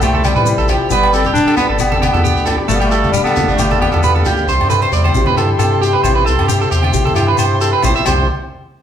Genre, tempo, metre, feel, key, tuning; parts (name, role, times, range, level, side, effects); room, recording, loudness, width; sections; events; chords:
highlife guitar band; 134 BPM; 4/4; straight; C major; A4 = 444 Hz
clear clarinet; melody; 0.0-4.2 s; G3 to D4; -18 LUFS; left 2 dB
flamenco guitar; accompaniment; 0.0-8.3 s; C3 to C5; -20 LUFS; left 6 dB
combo organ; sustained chords; 0.0-8.3 s; C5 to C6; -26 LUFS; equal
electric guitar at the edge of break-up; arpeggios; 0.0-8.3 s; D4 to E5; -17 LUFS; right 6 dB
round analog bass; bass; 0.0-8.3 s; E1 to A2; -17 LUFS; equal
agogo bells; percussion; 0.0-8.2 s; -23 LUFS; left 3 dB
shekere; percussion; 0.0-8.3 s; -24 LUFS; left 4 dB
congas; percussion; 0.1-8.3 s; -22 LUFS; right 1 dB
wet large studio reverb, RT60 0.9 s; band playing live in one room; -11 LUFS; side -9 dB against mid
0.0-4.5 A section; 4.5-8.1 B section
0.0 C; 0.9 G; 4.5 C